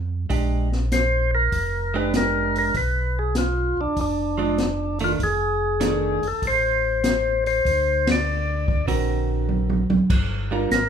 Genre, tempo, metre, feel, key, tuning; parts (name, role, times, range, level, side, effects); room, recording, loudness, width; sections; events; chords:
soul jazz organ trio; 98 BPM; 4/4; swing 68% on 8ths; A4 = 445 Hz
mellow tonewheel organ; bass; 0.0-10.9 s; F1 to F2; -26 LUFS; equal; slow rotary speaker
vintage hollow-body jazz guitar; accompaniment; 0.3-10.7 s; D3 to A#4; -26 LUFS; right 5 dB
open jazz drum kit; drums; 0.3-10.9 s; crash cymbal, hi-hat, kick drum, ride cymbal, snare drum, toms; -24 LUFS; equal
percussive tonewheel organ; melody; 0.9-10.9 s; D4 to D5; -22 LUFS; left 2 dB; slow rotary speaker
moderate large studio reverb, RT60 1.0 s; band playing live in one room; -20 LUFS; side -8 dB against mid
0.0-10.9 A section
band accent 8.0-8.3; drum fill 9.5-10.1
0.3 Bb6; 2.8 Bdim; 5.2 F6; 7.7 Daug7; 10.1 Gm7